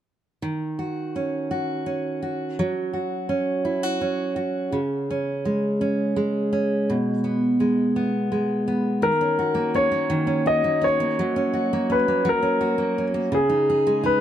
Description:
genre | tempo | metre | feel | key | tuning
pop | 56 BPM (dotted quarters) | 6/8 | straight | unclear | A4 = 439 Hz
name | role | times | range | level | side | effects
picked steel-string acoustic guitar | accompaniment | 0.4-14.2 s | B2 to G#4 | -22 LUFS | right 1 dB | none
warm concert grand piano | melody | 9.0-14.2 s | G#4 to D#5 | -21 LUFS | left 2 dB | none
room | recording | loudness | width
light reverb | dark, warm production | -21 LUFS | side -10 dB against mid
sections
0.4-9.0 A section; 9.0-14.2 B section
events
none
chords
0.4 D#m7; 2.6 F#5; 4.7 C#5; 6.9 G#m/B; 9.0 D#m7; 11.2 F#; 13.3 C#sus2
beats
| 0.43 1.50 | 2.58 3.65 | 4.73 5.81 | 6.88 7.96 | 9.03 10.10 | 11.18 12.25 | 13.32

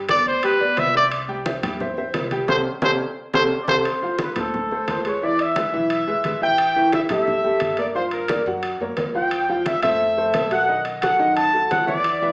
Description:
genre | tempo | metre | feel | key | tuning
latin, salsa | 176 BPM | 4/4 | straight | C major | A4 = 440 Hz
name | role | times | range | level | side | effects
warm grand piano | accompaniment | 0.0-12.3 s | D#3 to G5 | -24 LUFS | equal | none
upright bass | bass | 0.0-12.3 s | A1 to G2 | -38 LUFS | equal | none
clear trumpet | melody | 0.1-3.8 s | B4 to E5 | -19 LUFS | equal | plate reverb
congas | percussion | 0.1-12.3 s | none | -30 LUFS | equal | none
timbales | percussion | 0.1-12.2 s | none | -28 LUFS | equal | none
mellow trumpet section | melody | 3.6-12.3 s | A4 to A5 | -20 LUFS | equal | plate reverb
room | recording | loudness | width
wet large studio reverb, RT60 0.8 s | heard from further back in the room, small speaker sound | -18 LUFS | side -28 dB against mid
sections
0.0-3.9 A section; 3.9-12.3 B section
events
trumpet solo 0.0-3.9; band accent 2.5-3.9; drum fill 3.0-3.9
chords
0.0 G; 1.1 C6; 3.9 Dm7; 5.2 E; 6.6 A5; 7.9 Gm7; 8.6 F#; 9.3 Fmaj9; 10.7 B7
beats
0.09 0.43 0.78 | 1.12 1.46 1.80 2.14 | 2.48 2.83 3.17 3.51 | 3.85 4.19 4.53 4.88 | 5.22 5.56 5.90 6.24 | 6.58 6.92 7.27 7.61 | 7.95 8.29 8.63 8.97 | 9.32 9.66 10.00 10.34 | 10.68 11.02 11.37 11.71 | 12.05

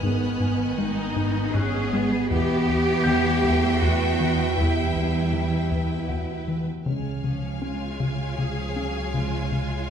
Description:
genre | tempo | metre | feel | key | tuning
cinematic | 79 BPM | 3/4 | straight | unclear | A4 = 440 Hz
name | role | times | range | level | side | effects
clear studio violin section | melody | 0.0-9.9 s | G5 to G#5 | -34 LUFS | left 2 dB | none
bright clarinet | second line | 0.0-9.9 s | D#3 to C#4 | -31 LUFS | left 1 dB | none
rich studio violin section | second line | 0.0-9.9 s | B4 to E#5 | -35 LUFS | left 1 dB | none
rich studio viola section | accompaniment | 0.0-9.9 s | E#3 to D#4 | -30 LUFS | right 2 dB | none
mellow French horn section | sustained chords | 0.0-9.4 s | G#3 to G#4 | -37 LUFS | left 3 dB | none
mellow trombone section | sustained chords | 0.0-9.4 s | G#2 to G#3 | -38 LUFS | right 5 dB | none
tight sequencer bass | riff | 0.0-9.7 s | E2 to C#4 | -27 LUFS | left 2 dB | none
clear studio double bass section | bass | 0.0-9.9 s | G#1 to E2 | -28 LUFS | right 2 dB | none
rich studio cello section | bass | 0.0-9.9 s | B3 to G#4 | -29 LUFS | right 1 dB | none
dark concert grand piano | texture | 0.0-9.9 s | F#4 to G6 | -38 LUFS | left 1 dB | none
rich studio violin section | texture | 0.0-9.9 s | D#6 to B#6 | -39 LUFS | left 4 dB | none
room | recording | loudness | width
wet recital hall reverb, RT60 1.5 s | heard from further back in the room | -22 LUFS | side -8 dB against mid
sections
0.0-9.9 A section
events
none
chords
0.0 G#m; 2.3 Em; 6.9 C#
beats
| 0.02 0.78 1.54 | 2.30 3.06 3.82 | 4.58 5.34 6.10 | 6.86 7.62 8.37 | 9.13 9.89

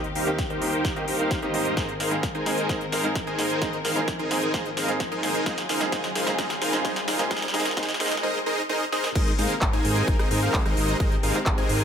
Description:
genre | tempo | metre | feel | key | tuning
EDM, festival progressive house | 130 BPM | 4/4 | straight | Ab major | A4 = 440 Hz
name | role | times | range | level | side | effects
warm studio string section | sustained chords | 0.0-11.8 s | Db2 to Bb4 | -32 LUFS | left 2 dB | sidechain pumping
dense compressed supersaw | riff | 0.0-11.8 s | Eb4 to Ab5 | -26 LUFS | equal | sidechain pumping, low-pass filter, ping-pong delay
big-room dance drum kit | drums | 0.0-11.8 s | crash cymbal, handclaps, hi-hat, rim click, snare drum | -30 LUFS | equal | overdrive, high-pass filter on snare, high-pass filter on hats, high-pass filter on cymbals
riser | sound effects | 1.0-8.2 s | none | -39 LUFS | right 1 dB | none
bright grand piano | accompaniment | 0.3-8.1 s | Ab2 to C5 | -31 LUFS | right 2 dB | sidechain pumping, ping-pong delay
electronic kick drum | drums | 0.4-11.6 s | none | -27 LUFS | equal | none
fat analog bass | bass | 9.2-11.8 s | Ab1 to Ab2 | -28 LUFS | equal | sidechain pumping
room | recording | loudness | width
moderate digital room reverb, RT60 1.2 s | high-pass filter | -22 LUFS | side -8 dB against mid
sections
0.0-9.2 A section; 9.2-11.8 B section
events
build-up 0.0-9.2; drum fill 0.0-8.2, 8.9; filter sweep 0.0-9.2; riser 1.0-8.2; drop 9.2-11.8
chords
0.0 Eb6; 1.8 Abadd9; 5.5 Db; 9.2 Abadd9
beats
0.39 0.85 1.31 | 1.77 2.23 2.69 3.15 | 3.62 4.08 4.54 5.00 | 5.46 5.92 6.39 6.85 | 7.31 7.77 8.23 8.69 | 9.15 9.62 10.08 10.54 | 11.00 11.46

